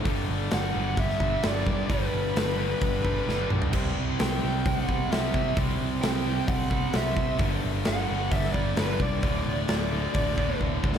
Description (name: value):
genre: hard rock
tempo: 131 BPM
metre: 4/4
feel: straight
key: unclear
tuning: A4 = 436 Hz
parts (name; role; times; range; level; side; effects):
- heavy high-gain guitar; riff; 0.0-11.0 s; D2 to C4; -32 LUFS; left 10 dB; distortion, slapback echo
- overdriven electric guitar; riff; 0.0-11.0 s; D2 to C4; -33 LUFS; right 10 dB; spring reverb, slapback echo
- picked electric bass; bass; 0.1-11.0 s; D1 to C3; -31 LUFS; equal; none
- big rock drum kit; drums; 0.1-11.0 s; crash cymbal, hi-hat, kick drum, snare drum, toms; -28 LUFS; equal; none
- bluesy overdriven lead guitar; melody; 0.5-10.6 s; B4 to G5; -32 LUFS; right 1 dB; distortion, slapback echo, tape echo
room: moderate lush hall reverb, RT60 2.0 s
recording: big arena sound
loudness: -24 LUFS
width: side -8 dB against mid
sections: 0.0-11.0 A section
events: drum fill 3.3-3.7, 10.6-11.0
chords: 0.1 G; 3.7 C; 7.4 G5; 9.2 D5